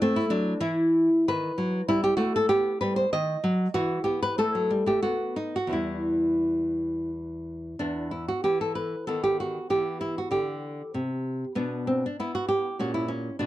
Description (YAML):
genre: classical, baroque-style dance for nylon-string guitar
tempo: 85-100 BPM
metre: 3/4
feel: rubato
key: E minor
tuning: A4 = 440 Hz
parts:
  - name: nylon-string guitar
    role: solo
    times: 0.0-13.5 s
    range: E2 to D#5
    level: -24 LUFS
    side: equal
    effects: none
room: light reverb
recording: dry, close 1970s-style studio recording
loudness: -24 LUFS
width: side -14 dB against mid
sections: 0.0-7.8 A section; 7.8-13.5 B section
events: none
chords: 0.0 A5; 1.3 B/D#; 1.9 Gmaj9; 3.1 D#m; 3.8 E5; 4.4 F#m; 5.1 N.C.; 5.7 Em; 7.8 E5; 9.1 B/D#; 9.7 Em; 11.6 Bm; 12.8 A#dim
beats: | 0.01 0.62 1.28 | 1.90 2.52 3.13 | 3.76 4.40 5.05 | 5.74 6.45 7.14 | 7.81 8.44 9.07 | 9.69 10.31 10.94 | 11.56 12.18 12.79 | 13.40